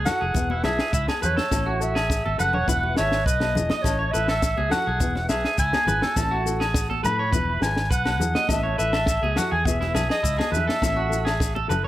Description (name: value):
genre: highlife guitar band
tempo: 103 BPM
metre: 4/4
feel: straight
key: E major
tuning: A4 = 440 Hz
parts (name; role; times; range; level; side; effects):
- electric guitar through a small old amp; arpeggios; 0.0-11.9 s; E4 to D#5; -27 LUFS; right 5 dB; none
- vintage muted fingered electric bass; bass; 0.0-11.9 s; E1 to A2; -27 LUFS; equal; none
- warm clarinet; melody; 0.1-11.7 s; C#5 to B5; -26 LUFS; equal; none
- nylon-string guitar; accompaniment; 0.1-11.9 s; B3 to A4; -32 LUFS; left 5 dB; none
- compact cocktail drum kit; drums; 0.1-11.5 s; kick drum, snare drum; -26 LUFS; equal; none
- agogo bells; percussion; 0.1-11.8 s; none; -36 LUFS; left 7 dB; none
- congas; percussion; 0.1-11.8 s; none; -32 LUFS; left 2 dB; none
- maracas; percussion; 0.1-11.8 s; none; -34 LUFS; left 11 dB; none
room: light reverb, small room ambience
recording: none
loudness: -20 LUFS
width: side -14 dB against mid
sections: 0.0-11.9 A section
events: drum fill 2.2-2.7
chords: 0.4 E; 1.5 A; 2.7 E; 3.8 A; 5.0 E; 6.2 A; 7.3 E; 8.5 A; 9.7 E; 10.8 A